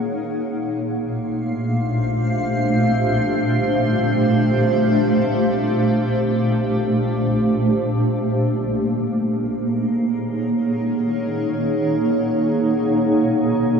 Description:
ambient; free time; A4 = 441 Hz
granular cloud pad; solo; 0.0-13.8 s; A#2 to F#5; -17 LUFS; equal; built-in reverb, tape echo
wet huge ambient reverb, RT60 7.9 s; -17 LUFS; side -6 dB against mid
0.0-8.2 A section; 8.2-13.8 B section
0.1 A#maj9; 8.2 D#m7; 12.3 Badd9
free time

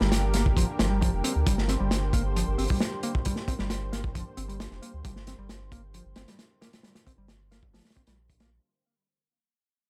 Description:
breakbeat, breaks; 134 BPM; 4/4; straight; G minor; A4 = 440 Hz
lush unison pad; sustained chords; 0.0-8.6 s; D3 to C5; -38 LUFS; equal; chorus, sidechain pumping
picked electric bass; riff; 0.0-8.5 s; F3 to C4; -36 LUFS; equal; tube saturation, vintage 12-bit sampler grit, delay
saturated sub bass; bass; 0.0-8.6 s; F1 to D2; -32 LUFS; equal
crunchy breakbeat drum kit; drums; 0.0-8.5 s; hi-hat, kick drum, snare drum; -30 LUFS; equal
small room ambience; -27 LUFS; mono
0.0-8.6 A section
fade-out 0.0-8.6
0.0 Gm
0.12 0.57 1.02 | 1.46 1.91 2.36 2.81 | 3.25 3.70 4.15 4.60 | 5.05 5.49 5.94 6.39 | 6.84 7.29 7.73 8.18

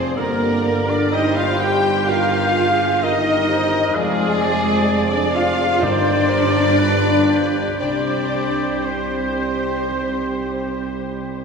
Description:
classical; 57-65 BPM; 4/4; rubato; C minor; A4 = 443 Hz
warm symphonic violin section; melody; 0.0-10.9 s; Ab4 to G5; -26 LUFS; left 3 dB
dark clarinet; second line; 0.0-11.4 s; Ab4 to D5; -31 LUFS; left 4 dB
rich studio violin section; second line; 0.0-10.9 s; Ab4 to G5; -30 LUFS; equal
warm oboe; second line; 0.0-11.3 s; G4 to F5; -28 LUFS; equal
rich symphonic viola section; accompaniment; 0.0-11.4 s; G4 to Eb5; -28 LUFS; equal
warm bassoon; accompaniment; 0.0-11.4 s; D3 to G3; -29 LUFS; right 1 dB
warm French horn section; sustained chords; 0.0-10.9 s; Ab3 to G4; -23 LUFS; left 3 dB
concert harp; arpeggios; 0.0-11.4 s; F2 to Ab4; -32 LUFS; left 6 dB
dark symphonic cello section; bass; 0.0-10.8 s; Ab3 to G4; -26 LUFS; right 3 dB
mellow tuba; bass; 0.0-11.4 s; F1 to C2; -28 LUFS; right 4 dB
rich symphonic double bass section; bass; 0.0-11.4 s; C2 to G2; -28 LUFS; right 4 dB
mellow flute section; second line; 0.2-10.9 s; Ab4 to G5; -29 LUFS; left 2 dB
mellow trumpet; stabs; 0.2-10.9 s; Ab4 to G5; -26 LUFS; right 1 dB
timpani; percussion; 5.8-6.7 s; G2; -31 LUFS; right 1 dB
wet concert hall reverb, RT60 2.1 s; minimal, uncompressed stereo recording; -16 LUFS; side -5 dB against mid
0.0-11.4 A section
0.2 Gm; 2.1 Eb/G; 4.0 Ddim/F; 5.8 Cm/G; 6.8 G7; 7.8 Cm
| 0.17 1.13 2.09 3.03 | 3.96 4.89 5.82 6.78 | 7.80 8.85 9.88 10.88

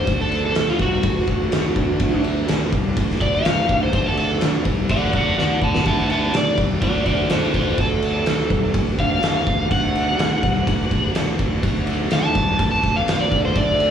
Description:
blues rock power trio and southern rock; 125 BPM; 4/4; straight; D mixolydian; A4 = 437 Hz
overdriven slide guitar; melody; 0.0-13.9 s; F4 to A5; -22 LUFS; equal; slapback echo
fuzz fingered electric bass; bass; 0.0-13.9 s; C2 to D2; -22 LUFS; equal; overdrive
oversized low-tuned drum kit; drums; 0.1-13.9 s; kick drum, ride cymbal, snare drum; -21 LUFS; equal
small room ambience; live gig heard through the venue's PA, club reverb; -17 LUFS; side -8 dB against mid
0.0-13.9 A section
electric slide guitar solo 0.0-13.9; drum fill 5.4-5.9
0.0 D
| 0.08 0.56 1.04 1.52 | 2.01 2.49 2.97 3.45 | 3.94 4.42 4.90 5.38 | 5.86 6.34 6.82 7.31 | 7.79 8.27 8.75 9.23 | 9.71 10.19 10.67 11.15 | 11.64 12.12 12.60 13.08 | 13.56

